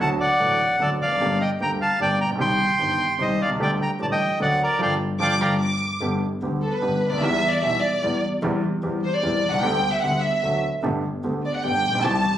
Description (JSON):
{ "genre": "tango", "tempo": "149 BPM", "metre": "3/4", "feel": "rubato", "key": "G minor, G major from 6.0 s", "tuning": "A4 = 441 Hz", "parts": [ { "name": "bandoneon", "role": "melody", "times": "0.0-5.5 s", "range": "A4 to C6", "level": "-21 LUFS", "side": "equal", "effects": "none" }, { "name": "warm concert grand piano", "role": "accompaniment", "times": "0.0-12.2 s", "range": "G1 to G4", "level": "-25 LUFS", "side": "equal", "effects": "none" }, { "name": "clear double bass", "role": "bass", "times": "0.0-12.2 s", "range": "F1 to E2", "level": "-30 LUFS", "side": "equal", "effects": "none" }, { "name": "warm studio violin section", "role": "second line", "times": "5.2-12.4 s", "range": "A4 to D6", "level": "-23 LUFS", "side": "equal", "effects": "none" } ], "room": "moderate studio reverb, RT60 0.8 s", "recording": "recorded on a phone in the room, club reverb, compression", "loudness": "-20 LUFS", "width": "side -11 dB against mid", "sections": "0.0-6.0 A section; 6.0-12.4 B section", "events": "band accent 4.8-6.0; violin section solo 6.0-12.4", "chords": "0.0 D; 1.2 Gm; 2.4 Cm; 3.6 Dsus4; 4.4 D; 4.8 G5; 6.0 G; 7.2 Em; 8.4 C/E; 9.6 G/D; 10.4 D; 10.8 Gadd9" }